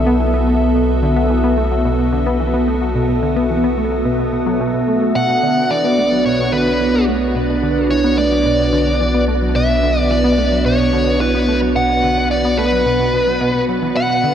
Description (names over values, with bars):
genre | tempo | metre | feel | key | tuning
ambient, sequencer-driven space music | 109 BPM | 4/4 | straight | B minor | A4 = 440 Hz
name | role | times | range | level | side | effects
evolving wavetable pad | sustained chords | 0.0-14.3 s | B3 to F#5 | -17 LUFS | right 1 dB | chorus, built-in reverb
tight sequenced synth | riff | 0.0-14.3 s | B2 to B3 | -21 LUFS | equal | chorus, analog delay
round analog bass | bass | 0.0-14.3 s | B1 | -21 LUFS | equal | none
dark smooth lead guitar | melody | 5.2-14.3 s | B4 to F#5 | -17 LUFS | equal | overdrive, analog delay
room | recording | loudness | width
wet cathedral reverb, RT60 5.1 s | dreamy mix soaked in reverb | -13 LUFS | side -9 dB against mid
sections
0.0-14.3 A section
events
none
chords
0.0 Bm7